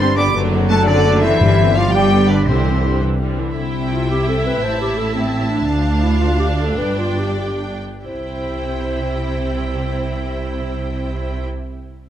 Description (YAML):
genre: cinematic, heroic adventure film score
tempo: 90-115 BPM (dotted quarters)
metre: 6/8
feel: straight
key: C major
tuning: A4 = 440 Hz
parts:
  - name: rich studio violin section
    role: melody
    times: 0.0-11.4 s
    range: C5 to D6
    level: -26 LUFS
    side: left 3 dB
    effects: none
  - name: clear oboe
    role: second line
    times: 0.0-3.0 s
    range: G4 to B5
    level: -28 LUFS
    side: equal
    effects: none
  - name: dark clarinet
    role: second line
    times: 0.0-11.5 s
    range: C4 to D5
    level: -24 LUFS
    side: left 1 dB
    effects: none
  - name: large flute ensemble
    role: second line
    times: 0.0-3.0 s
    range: C5 to D6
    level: -26 LUFS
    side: left 1 dB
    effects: none
  - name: rich symphonic violin section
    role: second line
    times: 0.0-11.5 s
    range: B3 to F5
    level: -30 LUFS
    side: left 3 dB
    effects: none
  - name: rich symphonic viola section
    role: accompaniment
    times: 0.0-11.5 s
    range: D3 to E4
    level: -26 LUFS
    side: right 2 dB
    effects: none
  - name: dark French horn section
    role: sustained chords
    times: 0.0-3.3 s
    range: D4 to B4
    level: -24 LUFS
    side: left 2 dB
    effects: none
  - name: concert harp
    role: arpeggios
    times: 0.0-5.7 s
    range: F#2 to D5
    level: -25 LUFS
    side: left 8 dB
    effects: none
  - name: mellow trumpet section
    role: stabs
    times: 0.0-3.0 s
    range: C4 to D5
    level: -25 LUFS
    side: equal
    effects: none
  - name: dark tuba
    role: bass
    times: 0.0-3.4 s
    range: F#1 to C2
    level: -24 LUFS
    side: right 3 dB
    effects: none
  - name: rich symphonic cello section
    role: bass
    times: 0.0-11.5 s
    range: D2 to D4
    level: -23 LUFS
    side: right 2 dB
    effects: none
  - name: rich symphonic double bass section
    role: bass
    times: 0.0-11.5 s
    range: F#1 to D2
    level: -22 LUFS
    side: right 2 dB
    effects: none
  - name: timpani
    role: percussion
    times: 1.4-3.0 s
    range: G2 to C3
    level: -22 LUFS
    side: left 1 dB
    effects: none
room: moderate scoring stage reverb, RT60 2.0 s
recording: none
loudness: -15 LUFS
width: side -10 dB against mid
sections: 0.0-3.6 A section; 3.6-8.0 B section; 8.0-10.7 C section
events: slowing down 5.1-8.0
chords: 0.3 D7/F#; 1.4 Gsus4; 1.9 G; 2.5 Cadd9; 3.6 C; 4.6 Am; 5.7 Dm; 6.8 G5; 8.0 C